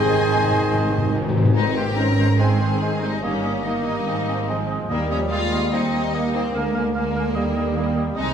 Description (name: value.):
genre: classical.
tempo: 144 BPM.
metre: 4/4.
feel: rubato.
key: Ab major.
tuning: A4 = 444 Hz.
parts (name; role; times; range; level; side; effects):
warm chamber violin section; melody; 0.0-8.3 s; Bb4 to Bb5; -32 LUFS; left 4 dB; none.
clear clarinet; second line; 0.0-8.3 s; Ab3 to Ab4; -34 LUFS; equal; none.
mellow flute section; second line; 0.0-8.3 s; Eb5 to Ab5; -35 LUFS; equal; none.
rich symphonic violin section; second line; 0.0-8.3 s; Bb3 to Eb5; -28 LUFS; left 5 dB; none.
warm oboe; second line; 0.0-8.3 s; C5 to F5; -32 LUFS; right 1 dB; none.
warm bassoon; accompaniment; 0.0-8.3 s; Eb3 to C4; -28 LUFS; right 2 dB; none.
warm symphonic viola section; accompaniment; 0.0-8.3 s; Eb3 to Eb4; -29 LUFS; right 2 dB; none.
mellow French horn section; sustained chords; 0.0-8.3 s; D3 to Ab4; -29 LUFS; left 2 dB; none.
warm trombone section; sustained chords; 0.0-1.3 s; Eb3 to C4; -30 LUFS; right 4 dB; none.
mellow trumpet; stabs; 0.0-1.3 s; Ab4; -28 LUFS; right 1 dB; none.
warm symphonic cello section; bass; 0.0-8.3 s; C2 to Ab2; -26 LUFS; right 3 dB; none.
warm symphonic double bass section; bass; 0.0-8.3 s; G1 to Eb2; -28 LUFS; right 3 dB; none.
timpani; percussion; 0.0-2.1, 4.9-5.5 s; Ab2 to Eb3; -23 LUFS; left 2 dB; none.
room: wet scoring stage reverb, RT60 1.9 s.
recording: none.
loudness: -19 LUFS.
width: side -8 dB against mid.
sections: 0.0-1.6 A section; 1.6-8.3 B section.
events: timpani fill 0.0-1.6.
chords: 0.0 Ab; 3.2 Eb7/G; 4.1 Ab; 4.9 Eb; 6.5 Bb7/D; 7.4 Eb.